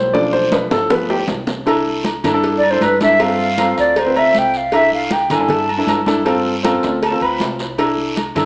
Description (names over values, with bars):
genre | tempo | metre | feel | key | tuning
Afro-Cuban jazz | 157 BPM | 4/4 | straight | C major | A4 = 440 Hz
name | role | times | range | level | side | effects
warm upright piano | accompaniment | 0.0-8.4 s | F3 to D5 | -17 LUFS | equal | none
upright bass | bass | 0.0-8.5 s | G1 to G2 | -28 LUFS | equal | none
bongos and cowbell | percussion | 0.1-8.5 s | none | -24 LUFS | equal | none
congas | percussion | 0.1-8.5 s | none | -24 LUFS | equal | none
guiro | percussion | 0.1-8.5 s | none | -30 LUFS | right 1 dB | none
timbales and agogo bells | percussion | 0.1-8.5 s | none | -22 LUFS | right 1 dB | none
breathy mellow jazz flute | melody | 2.6-7.4 s | B4 to B5 | -16 LUFS | equal | none
room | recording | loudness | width
moderate large studio reverb, RT60 0.9 s | worn, warbling old tape, cassette tape, warbly pitch drift, small speaker sound | -13 LUFS | side -27 dB against mid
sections
0.0-1.7 A section; 1.7-8.5 A section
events
upright piano solo 0.0-1.7; drum fill 0.1-1.7, 6.6-7.8; flute solo 1.7-8.5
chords
0.1 Bm7b5; 0.9 G7; 1.7 C6; 3.2 G7sus4; 4.7 C6; 6.3 G7sus4; 7.8 C6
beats
| 0.14 0.52 0.90 1.29 | 1.67 2.05 2.43 2.82 | 3.20 3.58 3.96 4.35 | 4.73 5.11 5.50 5.88 | 6.26 6.64 7.03 7.41 | 7.79 8.17